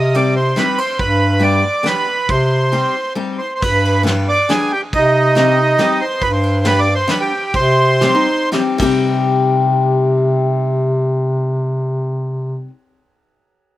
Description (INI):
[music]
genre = musette waltz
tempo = 108-142 BPM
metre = 3/4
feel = rubato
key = C harmonic minor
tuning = A4 = 440 Hz
[part]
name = accordion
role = melody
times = 0.0-8.5 s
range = Eb4 to Eb5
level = -16 LUFS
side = right 2 dB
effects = slapback echo
[part]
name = mellow bass clarinet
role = bass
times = 0.0-12.7 s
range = G2 to C3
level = -16 LUFS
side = equal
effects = none
[part]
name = picked steel-string acoustic guitar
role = accompaniment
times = 0.1-12.7 s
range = G3 to G4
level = -20 LUFS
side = left 5 dB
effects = none
[part]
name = soft brush drum kit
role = drums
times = 0.1-8.9 s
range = crash cymbal, kick drum, ride cymbal, snare drum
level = -25 LUFS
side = equal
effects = none
[part]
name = archtop guitar, miked and amplified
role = second line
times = 8.0-12.7 s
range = Eb4 to G4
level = -21 LUFS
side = right 2 dB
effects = none
[sound]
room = little or no reverb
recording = none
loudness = -13 LUFS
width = side -14 dB against mid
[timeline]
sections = 0.0-3.6 A section; 3.6-9.1 B section; 9.1-12.3 C section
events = break 3.2-3.6; slowing down 6.2-9.1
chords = 0.0 Cm; 1.0 G; 2.3 Cm; 3.6 G; 4.9 Cm; 6.2 G; 7.5 Cm